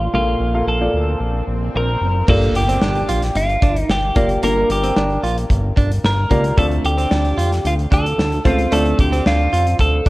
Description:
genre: piano-driven pop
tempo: 112 BPM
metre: 4/4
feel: straight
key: G minor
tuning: A4 = 439 Hz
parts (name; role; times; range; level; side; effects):
- twelve-string electric guitar; melody; 0.0-10.1 s; F4 to Bb4; -21 LUFS; equal; none
- warm upright piano; accompaniment; 0.0-10.1 s; G2 to F5; -23 LUFS; left 1 dB; none
- fat analog bass; bass; 0.0-10.1 s; F#1 to F2; -19 LUFS; equal; none
- swell and impact; sound effects; 0.9-4.4 s; none; -28 LUFS; equal; none
- direct-recorded clean electric guitar; riff; 2.3-10.1 s; A3 to F4; -24 LUFS; right 4 dB; none
- loose indie drum kit; drums; 2.3-10.1 s; crash cymbal, hi-hat, kick drum, snare drum; -20 LUFS; equal; none
room: light reverb, studio reverb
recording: worn, warbling old tape, cassette tape, warbly pitch drift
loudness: -15 LUFS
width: side -19 dB against mid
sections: 0.0-2.3 A section; 2.3-10.1 B section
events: swell 0.9-2.3; impact 2.3-4.4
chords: 0.0 Bbmaj7; 2.3 Gm7; 6.6 Dm7

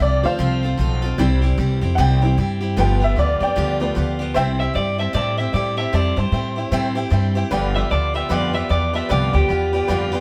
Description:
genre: rock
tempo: 152 BPM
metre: 4/4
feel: swing 61% on 8ths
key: C major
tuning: A4 = 440 Hz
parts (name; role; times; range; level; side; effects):
- honky-tonk upright piano; accompaniment; 0.0-10.2 s; E3 to A5; -26 LUFS; equal; none
- picked steel-string acoustic guitar; accompaniment; 0.0-10.2 s; G2 to A4; -27 LUFS; equal; none
- upright bass; bass; 0.0-10.2 s; G1 to A2; -22 LUFS; equal; none
- electric guitar through a small old amp; melody; 4.6-10.1 s; G4 to E5; -25 LUFS; equal; none
room: light reverb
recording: band playing live in one room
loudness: -20 LUFS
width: mono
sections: 0.0-4.4 A section; 4.4-10.2 B section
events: honky-tonk piano solo 0.0-4.4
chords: 0.0 F; 1.2 C; 2.8 G7; 4.4 C; 7.5 G7

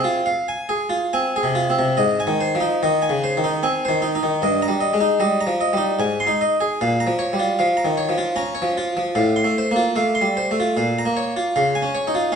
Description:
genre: classical, baroque-style suite movement for harpsichord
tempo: 75 BPM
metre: 3/4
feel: rubato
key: Ab major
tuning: A4 = 440 Hz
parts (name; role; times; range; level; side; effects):
- harpsichord; solo; 0.0-12.4 s; G2 to C6; -18 LUFS; equal; none
room: wet stone room reverb, RT60 1.2 s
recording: heard from further back in the room, nothing above 10.7 kHz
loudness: -18 LUFS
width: side -6 dB against mid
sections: 0.0-2.0 A section; 2.0-12.4 A section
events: none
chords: 0.0 Fm; 2.0 Ab; 4.4 Eb/G; 6.0 Ab; 6.8 Bbm; 9.2 F/A; 10.8 Bbm; 11.6 Db

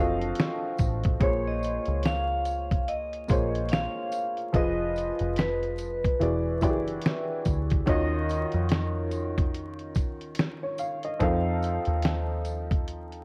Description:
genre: lo-fi hip hop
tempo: 72 BPM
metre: 4/4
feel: swing 61% on 16ths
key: Bb minor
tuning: A4 = 438 Hz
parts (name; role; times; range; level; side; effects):
- warm upright piano; accompaniment; 0.0-13.2 s; Eb3 to F5; -32 LUFS; equal; cassette tape, low-pass filter
- deep dub picked electric bass; bass; 0.0-13.2 s; E1 to F2; -33 LUFS; equal; transformer saturation
- dusty soul sampler-style drum kit; drums; 0.2-13.2 s; hi-hat, kick drum, snare drum; -29 LUFS; equal; none
- tambourine; percussion; 0.8-12.7 s; none; -54 LUFS; equal; none
- vibraphone with medium hard mallets; melody; 1.2-7.4 s; Cb5 to F5; -34 LUFS; equal; low-pass filter
room: light reverb, small room ambience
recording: worn, warbling old tape, cassette tape, vinyl crackle, warbly pitch drift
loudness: -28 LUFS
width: mono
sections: 0.0-13.2 A section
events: none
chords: 0.0 F7b9; 1.2 Bbm7; 4.5 Fm7b5; 6.2 E9; 7.9 Ebm9; 11.2 F7

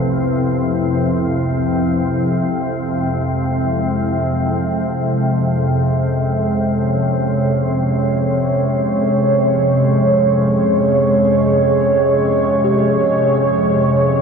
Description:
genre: dark ambient drone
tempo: free time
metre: none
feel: none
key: unclear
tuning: A4 = 441 Hz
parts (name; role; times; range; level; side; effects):
- deep dark ambient pad; sustained chords; 0.0-14.2 s; Ab3 to Db5; -17 LUFS; right 1 dB; chorus, built-in reverb
- gamelan-type bossed gongs; arpeggios; 0.0-1.7, 12.6-14.2 s; C2 to G4; -30 LUFS; right 3 dB; none
- organ-like drone; drone; 0.0-14.2 s; F2 to C3; -17 LUFS; equal; ensemble chorus, built-in reverb
room: wet huge ambient reverb, RT60 7.7 s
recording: dreamy mix soaked in reverb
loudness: -14 LUFS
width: side -6 dB against mid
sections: 0.0-14.2 A section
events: fade-in on ambient pad 0.0-14.2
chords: 0.0 Am; 1.0 Dbm

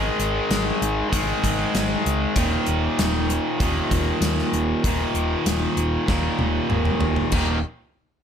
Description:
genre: hard rock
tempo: 97 BPM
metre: 4/4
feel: straight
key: unclear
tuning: A4 = 441 Hz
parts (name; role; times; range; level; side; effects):
- overdriven electric guitar; riff; 0.0-7.6 s; Eb2 to Ab3; -22 LUFS; equal; none
- hollow-body short-scale fingered electric bass; bass; 0.0-7.6 s; Eb1 to Eb2; -26 LUFS; equal; none
- gated 80s drum kit; drums; 0.2-7.5 s; crash cymbal, hi-hat, kick drum, snare drum, toms; -24 LUFS; equal; none
room: light reverb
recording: none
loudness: -20 LUFS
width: side -8 dB against mid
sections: 0.0-7.3 A section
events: drum fill 6.1-7.3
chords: 0.0 Ab5; 2.4 Eb5

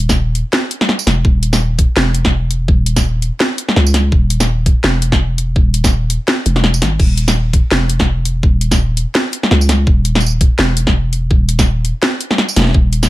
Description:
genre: half-time drum and bass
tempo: 167 BPM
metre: 4/4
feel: swing 56% on 16ths, half-time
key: unclear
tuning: A4 = 440 Hz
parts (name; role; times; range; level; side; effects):
- growling 808-style bass; bass; 0.0-13.1 s; Eb1 to Db2; -14 LUFS; equal; none
- drum and bass drum kit; drums; 0.1-13.1 s; crash cymbal, hi-hat, snare drum, tambourine; -15 LUFS; equal; none
- electronic kick drum; drums; 0.1-12.8 s; none; -13 LUFS; equal; none
room: little or no reverb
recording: none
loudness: -12 LUFS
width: side -16 dB against mid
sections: 0.0-13.1 A section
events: none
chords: none

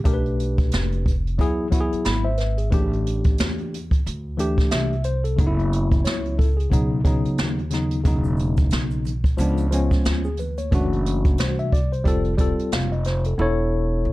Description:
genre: hip hop, jazz-hop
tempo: 90 BPM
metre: 4/4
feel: swing 57% on 16ths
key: E dorian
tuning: A4 = 439 Hz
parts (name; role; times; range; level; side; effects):
- mellow tine electric piano; accompaniment; 0.0-14.1 s; C#3 to B5; -24 LUFS; left 1 dB; medium stereo tremolo
- upright bass; bass; 0.1-14.1 s; E1 to E2; -24 LUFS; equal; none
- jazz brush drum kit; drums; 0.1-13.4 s; hi-hat, kick drum, snare drum; -22 LUFS; equal; none
- tube shaker and congas; percussion; 8.1-10.7 s; none; -40 LUFS; right 5 dB; none
room: light reverb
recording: none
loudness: -19 LUFS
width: side -18 dB against mid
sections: 0.0-14.1 A section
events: tine electric piano fill 1.7-2.7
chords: 0.1 Bm7b5; 1.4 E; 2.7 Am7; 5.4 F#5; 6.7 Badd9; 8.1 Esus2; 9.4 C#7b9; 10.7 F#m7b5; 12.1 Fadd9; 13.4 E5

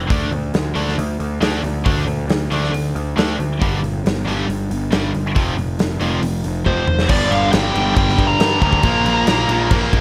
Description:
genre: hard rock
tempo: 137 BPM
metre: 4/4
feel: straight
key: G minor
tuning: A4 = 439 Hz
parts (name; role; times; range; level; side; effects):
- fuzz picked electric bass; bass; 0.0-10.0 s; F1 to G2; -24 LUFS; equal; overdrive
- high-gain distorted guitar; riff; 0.1-10.0 s; F2 to D4; -28 LUFS; equal; distortion
- high-gain distorted guitar; riff; 0.1-10.0 s; F2 to D4; -26 LUFS; equal; distortion
- big rock drum kit; drums; 0.1-10.0 s; crash cymbal, hi-hat, kick drum, snare drum, toms; -22 LUFS; equal; none
- dark smooth lead guitar; melody; 6.7-9.9 s; C5 to Bb5; -22 LUFS; equal; overdrive
- heavy high-gain guitar; riff; 7.1-10.0 s; G2 to Bb3; -31 LUFS; equal; none
room: studio reverb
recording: none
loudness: -18 LUFS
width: mono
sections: 0.0-7.1 A section; 7.1-10.0 B section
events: drum fill 6.7-7.1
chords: 0.1 D5; 3.6 G5; 5.4 F5; 7.1 G5; 8.8 Bb5

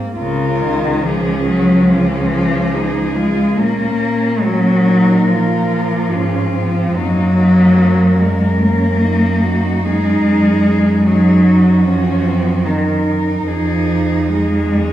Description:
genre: classical, lyrical piece for cello ensemble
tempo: 65-77 BPM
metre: 4/4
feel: rubato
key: Db major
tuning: A4 = 436 Hz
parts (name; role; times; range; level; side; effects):
- warm cello; second line; 0.0-14.9 s; Bb3 to F4; -21 LUFS; right 3 dB; none
- rich cello; melody; 0.2-14.9 s; Eb4 to Bb4; -24 LUFS; left 4 dB; none
- rich cello; accompaniment; 0.2-14.9 s; Db3 to Bb3; -14 LUFS; left 1 dB; none
- dark cello; bass; 0.2-14.9 s; Db2 to Bb2; -18 LUFS; right 1 dB; none
room: wet recital hall reverb, RT60 1.6 s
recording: heard from further back in the room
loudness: -12 LUFS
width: side -12 dB against mid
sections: 0.2-14.9 A section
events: none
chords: 0.2 Db; 3.6 Bbm; 7.0 Ebm/Gb; 10.3 Ab7(no3)/Gb; 13.5 Db/F (rootless)

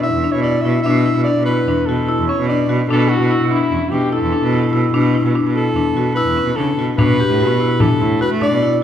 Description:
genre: contemporary instrumental, chamber music in an uneven meter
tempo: 147 BPM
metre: 5/4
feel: straight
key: unclear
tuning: A4 = 439 Hz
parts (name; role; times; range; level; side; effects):
- breathy soprano saxophone; melody; 0.0-8.8 s; A4 to E5; -21 LUFS; equal; none
- marimba with medium mallets; arpeggios; 0.0-8.7 s; C#4 to G4; -18 LUFS; left 4 dB; none
- bright cello; bass; 0.1-8.7 s; E2 to A3; -18 LUFS; right 2 dB; none
- stopped French horn; second line; 2.9-4.9 s; E4 to A4; -22 LUFS; right 1 dB; none
- frame drum; percussion; 7.0-8.6 s; none; -19 LUFS; left 1 dB; none
room: wet recital hall reverb, RT60 1.4 s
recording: heard from further back in the room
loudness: -14 LUFS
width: side -9 dB against mid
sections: 0.0-7.0 A section; 7.0-8.8 B section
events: none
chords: 0.0 Asus4; 7.0 Bm7

